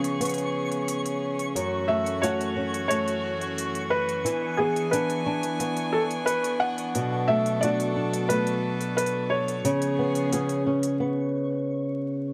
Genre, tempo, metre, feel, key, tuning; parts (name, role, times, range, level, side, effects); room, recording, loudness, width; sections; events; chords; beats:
folktronica; 89 BPM; 4/4; straight; A4 = 439 Hz
warm string quartet; sustained chords; 0.0-11.0 s; E3 to G#5; -34 LUFS; equal
flamenco guitar; arpeggios; 0.0-12.3 s; F#2 to G#4; -30 LUFS; equal; vintage 12-bit sampler grit, low-pass filter, digital delay
electronic hi-hat; drums; 0.0-11.0 s; -38 LUFS; equal; overdrive
twinkling granular texture; texture; 0.0-11.0 s; C#6; -41 LUFS; equal; built-in reverb
felt-muted upright piano; melody; 1.9-10.9 s; G#4 to F#5; -30 LUFS; equal; digital delay
moderate small room reverb, RT60 0.5 s; vinyl crackle; -26 LUFS; mono
0.0-12.3 A section
break 11.0-12.3
0.0 C#7; 1.6 F#m7; 4.3 E7; 7.0 Bm7; 9.6 C#7
0.21 0.88 | 1.56 2.23 2.91 3.58 | 4.25 4.93 5.60 6.28 | 6.95 7.63 8.30 8.97 | 9.65 10.32 11.00 11.67